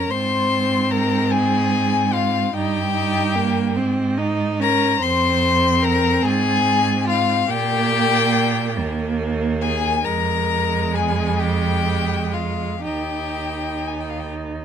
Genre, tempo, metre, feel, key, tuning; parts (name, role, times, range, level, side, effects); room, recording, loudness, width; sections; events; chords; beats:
classical, slow romantic movement for string quartet; 40-50 BPM (dotted quarters); 6/8; rubato; A4 = 440 Hz
warm violin; melody; 0.0-14.3 s; F5 to C6; -22 LUFS; left 7 dB
warm violin; second line; 0.0-14.2 s; F4 to C5; -25 LUFS; left 4 dB
rich viola; accompaniment; 0.0-14.6 s; Ab3 to Eb4; -23 LUFS; right 2 dB
rich cello; bass; 0.0-14.6 s; Eb2 to Bb2; -23 LUFS; right 4 dB
light reverb; close, detailed microphones; -17 LUFS; side -8 dB against mid
0.0-14.6 A section
0.1 Ab; 2.5 Eb/G; 3.8 Ab; 5.0 Fm; 7.5 Gm/Bb; 8.8 Eb5; 10.0 Fm; 12.8 Eb
| 0.10 1.31 | 2.54 3.77 | 5.00 6.23 | 7.48 8.77 | 10.04 11.40 | 12.84 14.29